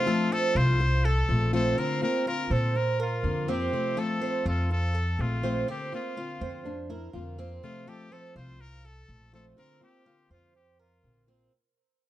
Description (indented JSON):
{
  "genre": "latin",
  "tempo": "123 BPM",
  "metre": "4/4",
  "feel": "straight",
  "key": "unclear",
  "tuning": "A4 = 439 Hz",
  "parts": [
    { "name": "trumpet with straight mute", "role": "melody", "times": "0.0-11.3 s", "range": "F4 to C5", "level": "-33 LUFS", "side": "left 2 dB", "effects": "plate reverb" },
    { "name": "picked plugged-in steel-string acoustic guitar", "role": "accompaniment", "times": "0.0-11.5 s", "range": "C3 to F4", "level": "-31 LUFS", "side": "left 3 dB", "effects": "none" },
    { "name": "Cuban tres", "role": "arpeggios", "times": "0.0-11.5 s", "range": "C4 to C5", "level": "-32 LUFS", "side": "right 5 dB", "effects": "tape echo" },
    { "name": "upright bass", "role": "bass", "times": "0.6-11.5 s", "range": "Bb1 to Bb2", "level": "-27 LUFS", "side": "equal", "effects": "none" },
    { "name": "flamenco guitar", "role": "second line", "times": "6.4-7.5 s", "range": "C4 to F4", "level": "-45 LUFS", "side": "left 2 dB", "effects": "none" }
  ],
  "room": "light reverb",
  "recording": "dark, warm production",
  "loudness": "-25 LUFS",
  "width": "side -14 dB against mid",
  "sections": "0.0-11.5 A section",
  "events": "fade-out 0.0-11.5",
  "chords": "0.0 F; 1.8 Bbadd9; 3.7 F; 5.7 Bbadd9; 7.6 F; 9.6 Bbadd9",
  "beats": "0.32 0.81 1.29 | 1.78 2.27 2.75 3.24 | 3.73 4.22 4.70 5.19 | 5.68 6.17 6.65 7.14 | 7.63 8.12 8.60 9.09 | 9.58 10.06 10.55 11.04"
}